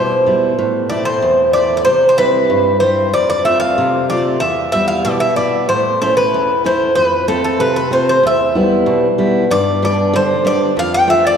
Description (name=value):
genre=greek folk, Greek bouzouki band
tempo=94 BPM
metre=2/4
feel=straight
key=E phrygian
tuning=A4 = 440 Hz
part: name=Greek bouzouki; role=melody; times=0.0-11.4 s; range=A4 to G5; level=-14 LUFS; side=equal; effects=none
part: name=picked steel-string acoustic guitar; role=accompaniment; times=0.0-11.4 s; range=E2 to F4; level=-17 LUFS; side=equal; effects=none
room=wet church reverb, RT60 3.4 s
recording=recorded in a church or concert hall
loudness=-12 LUFS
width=side -7 dB against mid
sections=0.0-9.5 A section; 9.5-11.4 B section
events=none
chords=0.0 Em; 0.6 Am; 1.9 C; 3.1 F; 4.4 Em; 5.7 A; 7.0 F; 8.2 Em; 9.5 G; 10.8 F